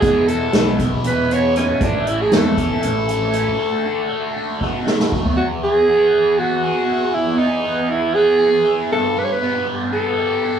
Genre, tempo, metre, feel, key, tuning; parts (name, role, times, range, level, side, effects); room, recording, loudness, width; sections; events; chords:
psychedelic rock; 236 BPM (eighths); 7/8; straight; E mixolydian, E major from 5.4 s; A4 = 440 Hz
raspy alto saxophone; melody; 0.0-10.6 s; C#4 to C#5; -18 LUFS; right 1 dB
cranked stack guitar; riff; 0.0-10.6 s; E2 to G#4; -22 LUFS; right 1 dB; overdrive, phaser
growling fingered electric bass; bass; 0.0-3.5 s; A1 to E2; -22 LUFS; right 1 dB; overdrive
soft-mallet drum kit; drums; 0.0-5.4 s; hi-hat, kick drum, snare drum, toms; -19 LUFS; equal
congas; percussion; 0.0-3.6 s; -32 LUFS; left 1 dB
moderate stone room reverb, RT60 0.9 s; band playing live in one room, small room ambience; -15 LUFS; side -8 dB against mid
0.0-5.4 A section; 5.4-10.6 B section
break 3.6-5.4; drum fill 4.6-5.4
0.0 E; 1.8 A; 3.6 D; 4.6 B7; 5.4 E; 8.9 G